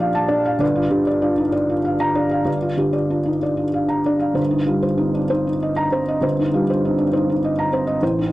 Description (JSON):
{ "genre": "neoclassical minimalist piano", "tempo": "62-68 BPM (dotted quarters)", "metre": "6/8", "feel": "rubato", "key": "unclear", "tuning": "A4 = 440 Hz", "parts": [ { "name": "felt-muted upright piano", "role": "solo", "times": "0.0-8.3 s", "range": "G1 to Bb5", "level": "-17 LUFS", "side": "equal", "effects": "none" } ], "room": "light reverb", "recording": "dry, gritty hardware recording", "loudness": "-17 LUFS", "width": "side -17 dB against mid", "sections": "0.0-8.3 A section", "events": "none", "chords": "0.0 Bbmaj7; 0.6 Gm7; 4.4 Cm7/G", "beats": "| 0.61 1.54 | 2.47 3.42 | 4.39 5.32 | 6.23 7.12 | 8.02" }